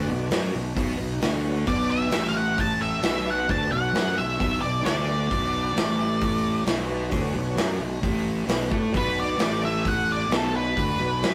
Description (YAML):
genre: blues rock power trio and southern rock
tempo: 132 BPM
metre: 4/4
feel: straight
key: B minor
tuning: A4 = 441 Hz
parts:
  - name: overdriven tonewheel organ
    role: sustained chords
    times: 0.0-11.3 s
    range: D4 to D5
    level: -38 LUFS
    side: equal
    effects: none
  - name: fuzz guitar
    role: riff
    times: 0.0-11.3 s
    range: A2 to A4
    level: -32 LUFS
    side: equal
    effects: distortion
  - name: fuzz fingered electric bass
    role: bass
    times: 0.0-11.3 s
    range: A1 to A2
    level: -30 LUFS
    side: equal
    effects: overdrive
  - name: big rock drum kit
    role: drums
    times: 0.3-11.3 s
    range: hi-hat, kick drum, snare drum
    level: -30 LUFS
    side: equal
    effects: none
  - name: octave-fuzz lead guitar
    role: melody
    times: 1.7-11.3 s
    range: A4 to A5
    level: -29 LUFS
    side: equal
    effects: distortion
room: moderate stone room reverb, RT60 1.0 s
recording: rough rehearsal-room recording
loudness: -25 LUFS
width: mono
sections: 0.0-11.3 A section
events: none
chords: 0.0 Bm